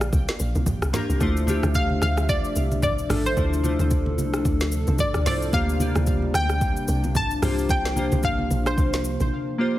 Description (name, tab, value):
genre	amapiano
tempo	111 BPM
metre	4/4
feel	swing 58% on 16ths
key	D minor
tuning	A4 = 442 Hz
part	analog pluck	melody	0.0-9.2 s	C5 to A5	-28 LUFS	equal	chorus, tape echo
part	glassy digital keys	accompaniment	0.0-9.8 s	A3 to D5	-28 LUFS	equal	chorus
part	woody log drum bass	bass	0.0-9.3 s	A1 to D2	-25 LUFS	equal	none
part	afro-pop drum kit	drums	0.0-9.3 s	hi-hat, kick drum, rim click, shaker, snare drum	-26 LUFS	equal	none
part	congas	percussion	0.6-9.3 s	none	-31 LUFS	right 2 dB	none
part	hollow soft pad	sustained chords	1.2-9.8 s	C3 to E5	-30 LUFS	left 2 dB	chorus
room	light reverb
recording	heavily compressed radio sound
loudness	-20 LUFS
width	side -14 dB against mid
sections	0.0-9.8 A section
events	silent gap 9.3-9.8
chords	0.0 C9sus4; 1.2 Dm9; 5.5 Bb69/D; 7.4 C9sus4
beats	0.13 0.67 | 1.21 1.75 2.29 2.83 | 3.37 3.91 4.45 4.99 | 5.53 6.07 6.61 7.15 | 7.69 8.23 8.78 9.31